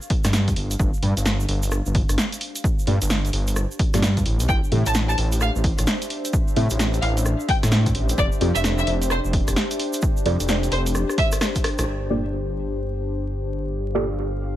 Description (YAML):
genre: UK garage, two-step garage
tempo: 130 BPM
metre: 4/4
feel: swing 63% on 16ths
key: unclear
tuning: A4 = 440 Hz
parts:
  - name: egg shaker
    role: percussion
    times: 0.0-11.9 s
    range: none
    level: -34 LUFS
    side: right 4 dB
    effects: none
  - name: warbly tape-like pad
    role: texture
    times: 0.0-14.6 s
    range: D4 to F5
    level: -30 LUFS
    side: left 2 dB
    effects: chorus, built-in reverb, sidechain pumping
  - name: electronic kick drum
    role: drums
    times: 0.1-11.6 s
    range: none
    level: -22 LUFS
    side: equal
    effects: none
  - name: punchy analog drum machine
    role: drums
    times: 0.1-11.9 s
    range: hi-hat, rim click, snare drum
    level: -26 LUFS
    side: equal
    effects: none
  - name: dark detuned saw bass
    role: bass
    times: 0.2-14.6 s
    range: F1 to A2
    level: -22 LUFS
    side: equal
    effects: sidechain pumping
  - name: deep mellow chord stab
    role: stabs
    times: 1.0-14.0 s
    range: Bb3 to E5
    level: -26 LUFS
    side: right 1 dB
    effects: chorus, phaser, digital delay
  - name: rich chamber violin section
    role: melody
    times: 4.5-11.3 s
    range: C5 to A5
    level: -26 LUFS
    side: equal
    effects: ping-pong delay
room: little or no reverb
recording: vinyl crackle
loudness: -19 LUFS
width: side -13 dB against mid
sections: 0.0-11.9 A section; 11.9-14.6 B section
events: fade-in on ambient pad 0.0-11.9; filter sweep on synth stab 0.0-11.9; drum fill 10.9-11.9; band accent 11.8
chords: 0.0 Gm9; 4.3 Am7; 8.2 F69; 11.9 Gm9